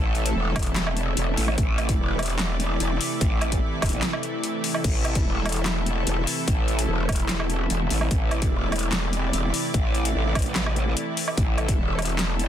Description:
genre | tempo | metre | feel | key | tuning
heavy wobble dubstep | 147 BPM | 4/4 | half-time | A minor | A4 = 439 Hz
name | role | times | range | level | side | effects
lush unison pad | sustained chords | 0.0-12.5 s | C3 to D5 | -28 LUFS | equal | chorus, vintage 12-bit sampler grit, sidechain pumping
growl bass | bass | 0.0-12.5 s | E1 to Bb1 | -25 LUFS | equal | chorus, overdrive
dubstep drum kit | drums | 0.1-12.5 s | crash cymbal, handclaps, hi-hat, snare drum, woodblock | -28 LUFS | equal | none
electronic kick drum | drums | 0.6-11.8 s | none | -24 LUFS | equal | none
room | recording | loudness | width
little or no reverb | dense, heavily limited modern master | -22 LUFS | side -10 dB against mid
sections
0.0-12.5 A section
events
break 4.0-4.8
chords
0.0 Am

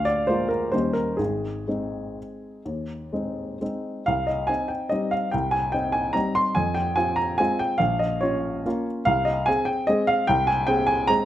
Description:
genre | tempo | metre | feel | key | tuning
classical, piano waltz | 118-155 BPM | 3/4 | rubato | Ab major | A4 = 441 Hz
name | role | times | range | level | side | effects
warm baby grand piano | solo | 0.0-11.2 s | Ab1 to C6 | -22 LUFS | equal | none
room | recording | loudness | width
moderate recital hall reverb, RT60 1.3 s | close, detailed microphones | -22 LUFS | side -12 dB against mid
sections
0.0-4.1 A section; 4.1-11.2 B section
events
none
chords
0.0 Bb7/D; 0.7 Eb7; 1.2 Ab; 4.1 Cm; 6.6 Fm; 7.8 Bbm; 9.1 Ab/C

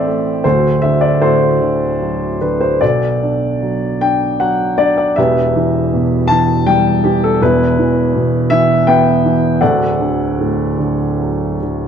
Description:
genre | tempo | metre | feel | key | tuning
classical, lyrical solo piano | 71-82 BPM | 3/4 | rubato | unclear | A4 = 440 Hz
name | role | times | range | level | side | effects
dark baby grand piano | solo | 0.0-11.9 s | D1 to A5 | -12 LUFS | equal | none
room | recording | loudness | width
moderate recital hall reverb, RT60 1.7 s | close, detailed microphones | -12 LUFS | side -8 dB against mid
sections
0.0-11.9 A section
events
none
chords
0.4 D7; 2.8 Bm7; 5.2 Em; 9.6 D

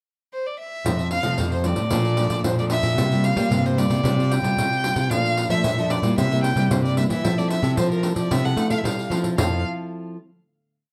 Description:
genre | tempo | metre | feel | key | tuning
samba and choro | 113 BPM | 4/4 | straight | F major | A4 = 440 Hz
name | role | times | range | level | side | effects
rich violin | melody | 0.3-9.6 s | Bb4 to G5 | -28 LUFS | equal | plate reverb
nylon-string guitar | bass | 0.8-9.6 s | F2 to A3 | -25 LUFS | equal | none
nylon-string guitar | accompaniment | 0.9-10.2 s | F2 to A4 | -28 LUFS | equal | none
pandeiro | percussion | 0.9-9.5 s | none | -30 LUFS | equal | none
room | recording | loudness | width
moderate small room reverb, RT60 0.5 s | none | -22 LUFS | mono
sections
0.0-0.9 pickup bar; 0.9-9.4 A section; 9.4-10.9 final chord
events
none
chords
0.0 N.C.; 0.9 F; 1.9 Bbmaj7; 3.0 C7sus4; 4.0 Fsus2/C; 5.1 Bbmaj7; 6.2 C7; 7.2 Fmaj7

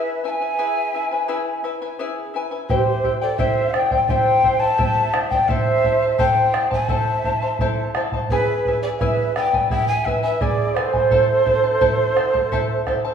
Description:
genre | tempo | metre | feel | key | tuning
andean folk, Andean ensemble | 86 BPM | 4/4 | straight | A minor | A4 = 439 Hz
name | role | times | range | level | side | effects
breathy mellow quena | melody | 0.0-13.0 s | B4 to A5 | -20 LUFS | equal | none
breathy large quena | second line | 0.0-13.0 s | G4 to F5 | -25 LUFS | right 4 dB | none
charango | accompaniment | 0.0-13.1 s | E4 to A5 | -24 LUFS | left 3 dB | none
bombo | percussion | 2.7-13.0 s | none | -23 LUFS | right 2 dB | none
room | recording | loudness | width
wet recital hall reverb, RT60 1.6 s | heard from further back in the room | -17 LUFS | side -7 dB against mid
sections
0.0-13.1 A section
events
none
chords
0.0 E; 2.7 C; 5.5 Am; 8.3 E; 11.1 Am

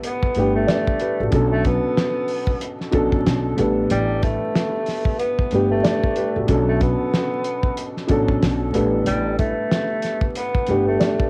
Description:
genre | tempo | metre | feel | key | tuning
hip hop, boom-bap hip-hop | 93 BPM | 4/4 | swing 60% on 16ths | unclear | A4 = 440 Hz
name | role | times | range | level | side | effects
dark grand piano | accompaniment | 0.0-11.3 s | A2 to D5 | -24 LUFS | equal | cassette tape, high-pass filter, low-pass filter
cloth-damped thuddy drum kit | drums | 0.0-11.3 s | hi-hat, kick drum, snare drum | -25 LUFS | equal | cassette tape
breathy tenor saxophone | melody | 0.1-11.3 s | G3 to B3 | -27 LUFS | equal | high-pass filter, low-pass filter, analog delay
upright bass | bass | 0.4-11.0 s | G1 to B1 | -27 LUFS | equal | none
room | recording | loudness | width
light reverb | home recording on cassette, vinyl crackle | -20 LUFS | mono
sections
0.0-11.3 A section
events
none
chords
0.0 A7sus4; 1.3 Bm7; 3.6 A7sus4; 6.5 Bm7; 8.7 A7sus4

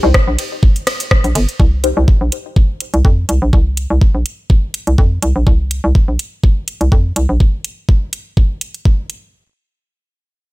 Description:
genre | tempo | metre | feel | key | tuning
minimal techno | 124 BPM | 4/4 | swing 54% on 16ths | C minor | A4 = 442 Hz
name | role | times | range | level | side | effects
filtered dub chord stab | stabs | 0.0-2.1 s | Eb4 to C5 | -21 LUFS | left 6 dB | phaser, analog chorus, ping-pong delay
hollow knocking FM bass | bass | 0.0-7.4 s | G1 to F2 | -14 LUFS | equal | sidechain pumping
electronic kick drum | drums | 0.1-9.0 s | none | -10 LUFS | equal | studio reverb
garage drum kit | drums | 0.1-9.2 s | hi-hat, ride cymbal, rim click | -19 LUFS | equal | studio reverb
room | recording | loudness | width
digital ambience | none | -12 LUFS | side -20 dB against mid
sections
0.0-1.6 A section; 1.6-9.3 B section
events
drop 0.0-1.6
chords
0.0 Cm; 1.6 N.C.

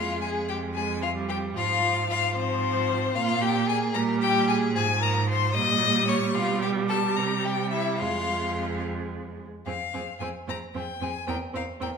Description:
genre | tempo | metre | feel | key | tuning
quick classical-period movement for string quartet | 75 BPM (dotted quarters) | 6/8 | straight | F minor | A4 = 440 Hz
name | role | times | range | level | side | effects
rich violin | melody | 0.0-11.9 s | C5 to Eb6 | -28 LUFS | left 9 dB | none
rich violin | second line | 0.0-11.9 s | C4 to Eb5 | -31 LUFS | left 2 dB | none
warm viola | accompaniment | 0.0-11.9 s | F3 to C4 | -31 LUFS | right 4 dB | none
clear cello | bass | 0.0-11.9 s | E2 to C3 | -30 LUFS | right 4 dB | none
room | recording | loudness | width
wet recital hall reverb, RT60 1.5 s | minimal, uncompressed stereo recording | -24 LUFS | side -6 dB against mid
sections
0.0-9.7 A section; 9.7-12.0 A section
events
none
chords
0.0 Fm; 1.6 Fm/Ab; 3.2 Gm7/Bb; 4.0 Gm/Bb; 4.8 Fm/Ab; 5.6 Eb7/Bb; 6.4 G/B; 7.2 C5; 8.0 Fm; 11.3 C7

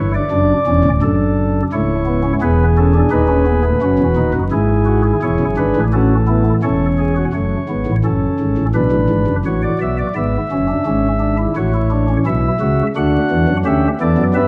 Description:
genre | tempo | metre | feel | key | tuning
classical, baroque-style 4-part fugue for pipe organ | 86 BPM | 4/4 | straight | unclear | A4 = 440 Hz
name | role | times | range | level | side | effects
pipe organ, flutes | solo | 0.0-14.5 s | C#1 to F#5 | -16 LUFS | equal | none
room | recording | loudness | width
wet recital hall reverb, RT60 1.7 s | dark, warm production, vinyl crackle | -16 LUFS | mono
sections
0.0-7.3 A section; 7.3-14.5 B section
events
none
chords
0.3 D; 1.7 A/C#; 3.1 B7/D#; 4.5 E7/G#; 5.9 A; 7.3 F#m; 8.8 Bm; 10.2 E; 11.6 A; 13.0 D

